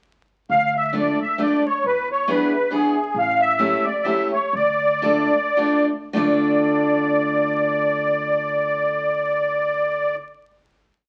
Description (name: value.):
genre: musette waltz.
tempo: 98-137 BPM.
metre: 3/4.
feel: swing 53% on 8ths, rubato.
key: D harmonic minor.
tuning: A4 = 440 Hz.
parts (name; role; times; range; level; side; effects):
musette accordion; melody; 0.5-10.2 s; G#4 to F5; -22 LUFS; equal; none.
upright bass; bass; 0.5-10.2 s; A1 to E2; -38 LUFS; equal; none.
picked steel-string acoustic guitar; accompaniment; 0.9-10.2 s; A3 to A4; -25 LUFS; equal; none.
room: wet studio reverb, RT60 0.8 s.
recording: very old 78 rpm record, vinyl crackle.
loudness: -20 LUFS.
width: mono.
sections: 0.5-6.2 A section; 6.2-9.8 final chord.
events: slowing down 3.2-6.2.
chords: 0.5 Dm; 1.8 E7; 3.2 A7; 4.5 Dm.